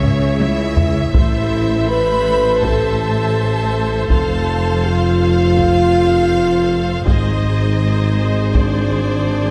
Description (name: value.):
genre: cinematic, epic orchestral film score.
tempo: 81 BPM.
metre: 4/4.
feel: straight.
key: A minor.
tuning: A4 = 440 Hz.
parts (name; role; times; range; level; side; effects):
clear chamber violin section; melody; 0.0-9.5 s; B#4 to F5; -31 LUFS; equal; none.
rich chamber violin section; second line; 0.0-9.5 s; C#5 to B5; -28 LUFS; equal; none.
rich symphonic viola section; accompaniment; 0.0-9.5 s; G#4 to C#5; -28 LUFS; equal; none.
warm French horn section; sustained chords; 0.0-9.5 s; C#4 to B4; -21 LUFS; equal; none.
mellow tuba; bass; 0.0-9.5 s; F1 to C#2; -25 LUFS; equal; none.
rich chamber cello section; bass; 0.0-9.5 s; F2 to C#3; -25 LUFS; equal; none.
rich symphonic double bass section; bass; 0.0-9.5 s; F1 to C#2; -23 LUFS; equal; none.
taiko ensemble; drums; 0.0-9.2 s; none; -21 LUFS; equal; none.
room: wet concert hall reverb, RT60 2.0 s.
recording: none.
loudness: -16 LUFS.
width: mono.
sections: 0.0-9.5 A section.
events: drum fill 0.0-1.1.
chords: 0.0 C#m; 1.1 Am; 4.1 F; 7.1 G#.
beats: 0.40 | 1.14 1.88 2.62 3.36 | 4.10 4.84 5.58 6.33 | 7.07 7.81 8.55 9.29.